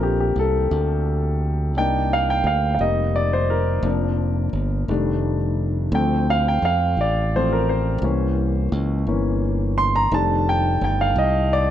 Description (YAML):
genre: slow gospel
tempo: 57 BPM (dotted quarters)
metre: 6/8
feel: straight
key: Bb major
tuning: A4 = 440 Hz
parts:
  - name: warm concert grand piano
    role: accompaniment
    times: 0.0-11.7 s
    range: Eb3 to C6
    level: -21 LUFS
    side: left 1 dB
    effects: none
  - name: modern bright fingered electric bass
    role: bass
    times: 0.0-11.7 s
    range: F1 to F2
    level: -22 LUFS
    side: right 1 dB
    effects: none
room: light reverb, small room ambience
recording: nothing above 10.3 kHz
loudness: -18 LUFS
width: side -11 dB against mid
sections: 0.0-11.7 A section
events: grand piano solo 0.0-11.7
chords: 0.0 Bbmaj13; 1.8 Cm9; 2.8 F9sus4; 3.8 Bb/F; 4.9 F13; 5.9 Dm7; 8.0 C7b9; 10.1 F13